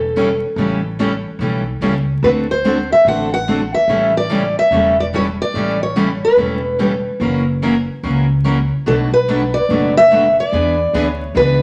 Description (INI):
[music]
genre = acoustic string swing (jazz manouche)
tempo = 145 BPM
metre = 4/4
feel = swing 63% on 8ths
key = A mixolydian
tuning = A4 = 442 Hz
[part]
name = picked steel-string acoustic guitar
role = melody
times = 0.0-11.6 s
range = A4 to F#5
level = -17 LUFS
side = equal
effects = none
[part]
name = upright bass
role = bass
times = 0.0-11.6 s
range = E1 to E2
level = -24 LUFS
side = equal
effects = none
[part]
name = picked steel-string acoustic guitar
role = accompaniment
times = 0.2-11.6 s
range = B2 to A4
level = -25 LUFS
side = equal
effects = none
[part]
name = picked steel-string acoustic guitar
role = accompaniment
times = 0.2-11.6 s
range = B2 to B4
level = -23 LUFS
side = equal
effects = none
[sound]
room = wet large studio reverb, RT60 0.9 s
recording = vinyl crackle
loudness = -16 LUFS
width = mono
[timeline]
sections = 0.0-11.6 A section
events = none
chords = 0.0 A7; 2.2 D7; 3.9 A7; 7.2 F#7; 8.9 Bm7; 10.5 E7